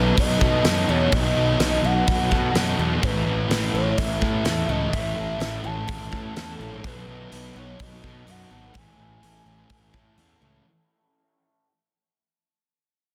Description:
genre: rock, shoegaze and dream pop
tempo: 126 BPM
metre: 4/4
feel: straight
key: A lydian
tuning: A4 = 440 Hz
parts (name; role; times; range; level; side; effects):
- pure breathy sine lead; melody; 0.0-10.2 s; B4 to A5; -31 LUFS; equal; chorus, slapback echo
- picked twelve-string acoustic guitar; arpeggios; 0.0-10.7 s; E3 to A4; -39 LUFS; equal; none
- raw garage guitar; riff; 0.0-10.7 s; A2 to A4; -33 LUFS; equal; overdrive, reverse reverb
- thick fuzz guitar; riff; 0.0-10.7 s; A2 to B3; -30 LUFS; equal; distortion, subtle chorus
- fuzz picked electric bass; bass; 0.0-10.6 s; G#1 to B2; -30 LUFS; equal; overdrive
- loose indie drum kit; drums; 0.2-10.3 s; hi-hat, kick drum, snare drum; -28 LUFS; equal; none
room: small room ambience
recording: dense, heavily limited modern master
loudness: -23 LUFS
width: mono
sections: 0.0-10.7 A section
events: fade-out 0.0-10.7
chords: 0.0 B7; 3.0 Aadd9; 6.8 B7; 8.7 Amaj7

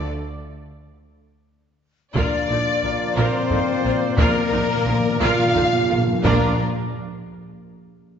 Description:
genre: cinematic, epic orchestral film score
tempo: 59 BPM (dotted quarters)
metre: 6/8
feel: straight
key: Bb major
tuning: A4 = 441 Hz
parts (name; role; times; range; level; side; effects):
- warm symphonic violin section; melody; 0.0-6.6 s; Bb4 to F5; -30 LUFS; left 3 dB; none
- flute section; second line; 0.0-6.6 s; Bb4 to Bb5; -27 LUFS; left 4 dB; none
- rich symphonic violin section; second line; 0.0-6.6 s; F4 to F5; -30 LUFS; left 3 dB; none
- rich symphonic viola section; accompaniment; 0.0-6.6 s; D4 to Bb4; -27 LUFS; right 2 dB; none
- mellow French horn section; sustained chords; 0.0-6.5 s; Bb3 to Bb4; -25 LUFS; left 1 dB; none
- warm woodwind section; sustained chords; 0.0-6.5 s; Bb3 to F5; -34 LUFS; left 1 dB; none
- clear symphonic double bass section; bass; 0.0-6.6 s; Bb1; -27 LUFS; right 3 dB; none
- warm symphonic cello section; bass; 0.0-6.6 s; Bb2; -29 LUFS; right 1 dB; none
- taiko ensemble; drums; 2.1-7.6 s; none; -26 LUFS; equal; none
- timpani; percussion; 2.1-6.6 s; Bb2; -27 LUFS; left 1 dB; none
- clear trombone section; sustained chords; 2.2-6.6 s; F3 to Bb3; -32 LUFS; right 2 dB; none
- mellow trumpet; stabs; 2.2-6.6 s; D5; -31 LUFS; equal; none
room: wet concert hall reverb, RT60 2.0 s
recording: nothing above 7.7 kHz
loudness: -18 LUFS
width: side -7 dB against mid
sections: 0.0-2.2 A section; 2.2-6.3 B section; 6.3-8.2 C section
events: break 0.1-2.2; timpani fill 2.2-6.3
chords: 0.0 D5; 2.2 Bb

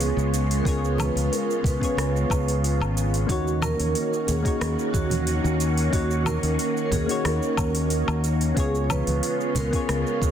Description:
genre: sunset chillout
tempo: 91 BPM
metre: 4/4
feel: straight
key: Eb minor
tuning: A4 = 440 Hz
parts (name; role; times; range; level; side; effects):
- vibraphone with soft mallets; melody; 0.0-10.3 s; Gb4 to Db5; -30 LUFS; right 1 dB; digital delay
- soft electric-piano-like synth keys; accompaniment; 0.0-10.3 s; Bb3 to Db5; -29 LUFS; moving between left 4 dB and right 5 dB; chorus, auto-pan, digital delay
- soft string machine; sustained chords; 0.0-10.3 s; Db3 to Gb4; -30 LUFS; equal; phaser, ensemble chorus
- fingered electric bass; bass; 0.0-10.3 s; Ab1 to Eb2; -25 LUFS; equal; none
- smooth R&B drum kit; drums; 0.0-10.3 s; cabasa, hi-hat, rim click, woodblock; -32 LUFS; left 1 dB; soft clipping on snare
- electronic kick drum; drums; 0.7-10.3 s; none; -26 LUFS; equal; none
- congas; percussion; 1.0-9.7 s; none; -33 LUFS; right 4 dB; none
room: light reverb, digital ambience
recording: dense, heavily limited modern master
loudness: -21 LUFS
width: side -9 dB against mid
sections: 0.0-10.3 A section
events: none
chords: 0.0 Db7; 3.3 Ebm7; 8.6 Db7

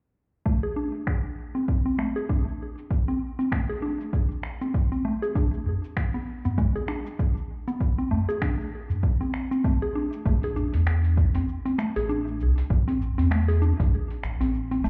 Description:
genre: organic downtempo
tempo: 98 BPM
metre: 4/4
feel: swing 57% on 16ths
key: A harmonic minor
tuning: A4 = 440 Hz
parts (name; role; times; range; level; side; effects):
- mallet-like synth pluck; arpeggios; 0.5-14.9 s; G#3 to G#4; -31 LUFS; equal; chorus, delay
- dusty soul sampler-style drum kit; drums; 0.5-14.9 s; cabasa, finger snaps, hi-hat; -40 LUFS; equal; overdrive, low-pass filter on perc, low-pass filter on snare, low-pass filter on hats
- electronic kick drum; drums; 0.5-13.9 s; none; -28 LUFS; equal; overdrive
- udu; percussion; 5.7-13.9 s; none; -32 LUFS; equal; none
- warm sub bass; bass; 10.3-14.9 s; E1 to E2; -26 LUFS; equal; none
room: moderate lush hall reverb, RT60 2.0 s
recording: heard muffled through a wall, club reverb, EQ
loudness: -26 LUFS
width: mono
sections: 0.5-10.3 A section; 10.3-14.9 B section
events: none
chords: 0.5 Am; 5.4 G#dim; 7.8 D5; 10.3 Am

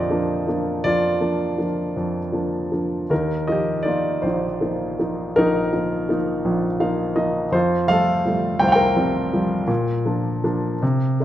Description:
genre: classical, lyrical solo piano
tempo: 54 BPM (dotted quarters)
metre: 6/8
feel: uneven beats, rubato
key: unclear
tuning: A4 = 440 Hz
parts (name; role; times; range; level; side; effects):
- warm grand piano; solo; 0.0-11.2 s; Bb1 to G5; -19 LUFS; equal; none
room: light reverb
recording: dark, warm production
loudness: -19 LUFS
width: side -12 dB against mid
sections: 0.0-11.2 A section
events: grand piano fill 6.5-7.5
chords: 0.0 Bb; 3.1 Ebsus2; 7.5 Fadd9; 9.7 Bb

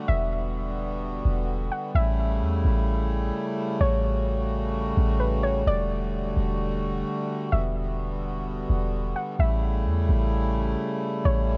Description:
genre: hip hop, atmospheric cloud-rap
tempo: 129 BPM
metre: 4/4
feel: half-time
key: E dorian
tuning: A4 = 441 Hz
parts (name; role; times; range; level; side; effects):
- hand-pumped harmonium; sustained chords; 0.0-11.6 s; C#3 to F#4; -31 LUFS; equal; none
- soft round pluck; melody; 0.1-11.6 s; B4 to F#5; -34 LUFS; equal; chorus, digital delay
- clean 808-style bass; bass; 0.1-11.6 s; E1 to E2; -28 LUFS; equal; none
room: light reverb, small room ambience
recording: worn, warbling old tape, cassette tape, warbly pitch drift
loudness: -26 LUFS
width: mono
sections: 0.0-11.6 A section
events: none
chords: 0.0 Em9; 1.9 A7; 5.7 Em11; 9.4 A7

